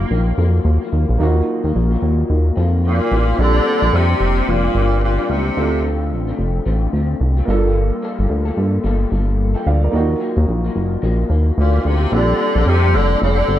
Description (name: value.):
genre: indie pop, bedroom pop.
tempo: 110 BPM.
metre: 4/4.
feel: swing 60% on 16ths.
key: unclear.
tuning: A4 = 438 Hz.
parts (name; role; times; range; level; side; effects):
electric guitar through a small old amp; accompaniment; 0.0-13.6 s; Bb2 to A4; -24 LUFS; left 5 dB; analog chorus, warbly pitch drift.
warm upright piano; accompaniment; 0.0-13.6 s; Bb3 to G5; -26 LUFS; right 5 dB; cassette tape.
chorused synth bass; bass; 0.0-13.6 s; F1 to G2; -16 LUFS; equal; none.
bright tenor saxophone; melody; 2.9-5.8, 11.6-13.6 s; Bb2 to D3; -19 LUFS; equal; ensemble chorus, ping-pong delay.
room: moderate small room reverb, RT60 0.5 s.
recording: rough home demo mix.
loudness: -14 LUFS.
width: side -12 dB against mid.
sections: 0.0-1.2 A section; 1.2-3.4 B section; 3.4-13.6 C section.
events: none.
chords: 0.0 Ebmadd9; 3.4 Bb69; 5.6 Dm7; 7.5 Gm9; 9.9 Ebmadd9; 12.1 Bb69.